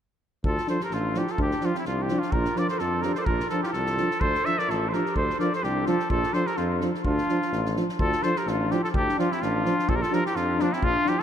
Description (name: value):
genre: balkan folk, Balkan brass band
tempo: 127 BPM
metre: 2/4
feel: swing 55% on 16ths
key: D minor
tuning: A4 = 440 Hz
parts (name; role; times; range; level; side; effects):
- warm tuba; bass; 0.4-10.9 s; A1 to F2; -29 LUFS; equal; none
- natural country drum kit; percussion; 0.4-11.2 s; kick drum, snare drum; -32 LUFS; equal; none
- cornet with straight mute; melody; 0.5-11.2 s; D4 to E5; -27 LUFS; left 1 dB; none
- dark clarinet; second line; 0.5-11.2 s; Bb3 to C5; -31 LUFS; right 1 dB; none
- dark French horn; accompaniment; 0.7-11.1 s; D4; -33 LUFS; left 5 dB; none
- dark euphonium; accompaniment; 0.7-11.2 s; F3; -31 LUFS; right 4 dB; none
room: wet cathedral reverb, RT60 4.8 s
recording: in a vast, echoing space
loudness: -23 LUFS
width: side -9 dB against mid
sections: 0.4-8.0 A section; 8.0-11.2 A section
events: none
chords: 0.4 Dm; 2.3 Bb; 4.2 Dm; 6.1 Bb; 7.1 Dm; 9.9 Bb